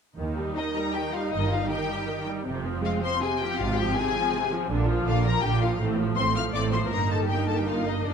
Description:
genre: quick classical-period movement for string orchestra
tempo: 160 BPM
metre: 3/4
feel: rubato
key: Eb major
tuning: A4 = 440 Hz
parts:
  - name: rich symphonic viola section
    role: accompaniment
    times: 0.2-8.1 s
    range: C3 to F4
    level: -29 LUFS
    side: right 1 dB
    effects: none
  - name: rich symphonic cello section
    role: bass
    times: 0.2-8.1 s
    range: Eb2 to Bb2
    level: -31 LUFS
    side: right 3 dB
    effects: none
  - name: rich symphonic double bass section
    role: bass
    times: 0.2-8.1 s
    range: F1 to Eb2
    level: -31 LUFS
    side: right 3 dB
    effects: none
  - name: bright symphonic violin section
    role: melody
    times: 0.6-8.1 s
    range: D5 to F6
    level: -30 LUFS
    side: left 7 dB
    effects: none
  - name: clear symphonic violin section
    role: second line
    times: 0.6-8.1 s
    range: D4 to F5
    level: -33 LUFS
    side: left 5 dB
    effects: none
room: wet scoring stage reverb, RT60 1.7 s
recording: dark, warm production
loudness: -24 LUFS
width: side -6 dB against mid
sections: 0.2-8.1 A section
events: none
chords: 0.2 Eb; 1.3 Eb/G; 2.5 Fm; 3.6 Fm/Ab; 4.7 Bb; 5.8 F/A; 6.9 Eb/G

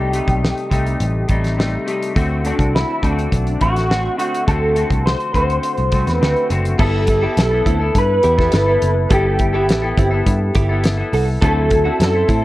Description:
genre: indie pop, bedroom pop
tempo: 104 BPM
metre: 4/4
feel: straight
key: G major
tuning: A4 = 438 Hz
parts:
  - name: electric guitar through a small old amp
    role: melody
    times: 0.0-12.4 s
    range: D4 to C5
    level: -19 LUFS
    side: equal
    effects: ensemble chorus, slapback echo
  - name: clean electric guitar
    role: accompaniment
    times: 0.0-12.4 s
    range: C3 to A4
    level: -23 LUFS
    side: left 2 dB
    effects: analog chorus, warbly pitch drift
  - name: vintage muted picked electric bass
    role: bass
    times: 0.0-12.4 s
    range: F#1 to A2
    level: -19 LUFS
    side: equal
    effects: tube saturation
  - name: damped 70s drum kit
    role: drums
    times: 0.1-12.4 s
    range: crash cymbal, hi-hat, kick drum, snare drum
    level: -19 LUFS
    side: equal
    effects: none
  - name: direct-recorded clean electric guitar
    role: second line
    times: 6.8-12.4 s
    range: C4 to A4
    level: -24 LUFS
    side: right 5 dB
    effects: ensemble chorus, slapback echo
room: light reverb, small room reverb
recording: worn, warbling old tape, cassette tape, warbly pitch drift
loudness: -14 LUFS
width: side -16 dB against mid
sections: 0.0-6.8 A section; 6.8-12.4 B section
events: none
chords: 0.0 Cm6; 2.2 D7; 6.8 G69; 11.4 D9

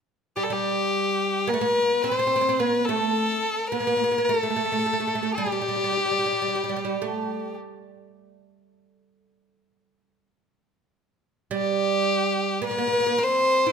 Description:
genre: Arabic maqam ensemble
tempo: 108 BPM (eighths)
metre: 10/8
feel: straight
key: unclear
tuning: A4 = 441 Hz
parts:
  - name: clear violin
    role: melody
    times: 0.4-13.7 s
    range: G4 to C5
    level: -23 LUFS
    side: left 3 dB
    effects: none
  - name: oud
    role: second line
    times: 0.4-13.7 s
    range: G3 to E4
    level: -27 LUFS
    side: right 6 dB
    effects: none
room: moderate recital hall reverb, RT60 1.6 s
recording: close, detailed microphones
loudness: -22 LUFS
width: side -6 dB against mid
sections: 0.0-13.7 A section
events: none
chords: none

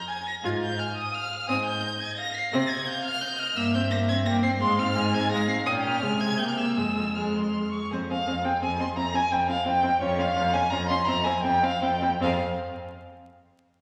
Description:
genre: quick classical-period movement for string quartet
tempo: 150-175 BPM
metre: 3/4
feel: rubato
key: F minor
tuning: A4 = 445 Hz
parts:
  - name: rich violin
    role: second line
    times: 0.0-12.4 s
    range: C5 to Db6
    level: -30 LUFS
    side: equal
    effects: none
  - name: rich violin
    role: melody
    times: 0.1-12.4 s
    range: E4 to C7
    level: -33 LUFS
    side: equal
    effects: none
  - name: rich viola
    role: accompaniment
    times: 0.4-12.4 s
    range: Ab3 to F4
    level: -31 LUFS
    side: equal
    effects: none
  - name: warm cello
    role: bass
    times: 0.4-12.4 s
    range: F2 to C3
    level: -34 LUFS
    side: equal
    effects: none
room: wet scoring stage reverb, RT60 1.8 s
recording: vinyl crackle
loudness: -26 LUFS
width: mono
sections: 0.0-7.9 A section; 7.9-12.2 B section; 12.2-13.3 C section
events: none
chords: 0.4 Fm/Ab; 1.5 Ab; 2.5 Cmadd11; 3.6 C7/G; 4.6 Fm/Ab; 5.7 Gdim/Bb; 6.0 Fm/C; 6.4 C7; 6.8 Fm; 10.0 Bbm/F (rootless); 11.1 C/F

